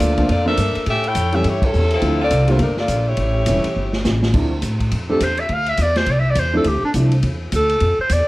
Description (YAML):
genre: jazz, big band swing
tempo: 208 BPM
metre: 4/4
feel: swing 60% on 8ths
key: D minor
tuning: A4 = 440 Hz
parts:
  - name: bright saxophone section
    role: melody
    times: 0.0-4.1 s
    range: F3 to G5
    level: -20 LUFS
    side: left 1 dB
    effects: none
  - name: clear concert grand piano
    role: accompaniment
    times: 0.0-7.1 s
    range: D3 to G4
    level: -22 LUFS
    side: equal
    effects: none
  - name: upright bass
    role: bass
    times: 0.0-8.3 s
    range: E1 to A2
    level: -19 LUFS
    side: equal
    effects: none
  - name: swinging big-band drum kit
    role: drums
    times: 0.0-8.2 s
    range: crash cymbal, hi-hat, kick drum, ride cymbal, snare drum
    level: -25 LUFS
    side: equal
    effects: none
  - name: bright clarinet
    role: melody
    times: 5.1-8.3 s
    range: D4 to F5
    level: -18 LUFS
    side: equal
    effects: none
room: moderate large studio reverb, RT60 1.1 s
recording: worn, warbling old tape, cassette tape, warbly pitch drift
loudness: -16 LUFS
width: side -19 dB against mid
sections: 0.0-4.3 A section; 4.3-8.3 B section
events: band accent 1.6; drum fill 3.8-4.3; clarinet solo 4.3-8.3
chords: 0.0 Bbmaj7; 0.9 A7; 2.0 Dm9; 2.6 Gm9; 3.2 A7; 4.3 Dm9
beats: 0.00 0.29 0.58 | 0.87 1.16 1.45 1.74 | 2.02 2.31 2.60 2.89 | 3.18 3.47 3.76 4.05 | 4.34 4.63 4.92 5.20 | 5.49 5.78 6.07 6.36 | 6.65 6.94 7.23 7.52 | 7.81 8.10